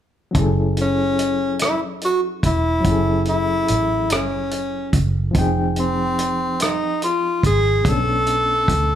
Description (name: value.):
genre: slow six-eight R&B.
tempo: 48 BPM (dotted quarters).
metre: 6/8.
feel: straight.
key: F# minor.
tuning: A4 = 436 Hz.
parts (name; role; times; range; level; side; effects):
barky reed electric piano; accompaniment; 0.3-9.0 s; B2 to G5; -25 LUFS; left 2 dB; overdrive, fast tremolo.
warm soul drum kit; drums; 0.3-8.9 s; hi-hat, kick drum, rim click; -22 LUFS; equal; none.
vintage muted fingered electric bass; bass; 0.4-9.0 s; E1 to D2; -23 LUFS; right 1 dB; none.
breathy tenor saxophone; melody; 0.8-9.0 s; C4 to A4; -20 LUFS; equal; none.
room: moderate large studio reverb, RT60 1.3 s.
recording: band playing live in one room.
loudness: -17 LUFS.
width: side -10 dB against mid.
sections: 0.3-9.0 A section.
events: none.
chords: 0.3 F#m9; 5.3 Fm9; 7.8 Bm9.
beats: | 0.35 1.60 | 2.85 4.10 | 5.35 6.60 | 7.85.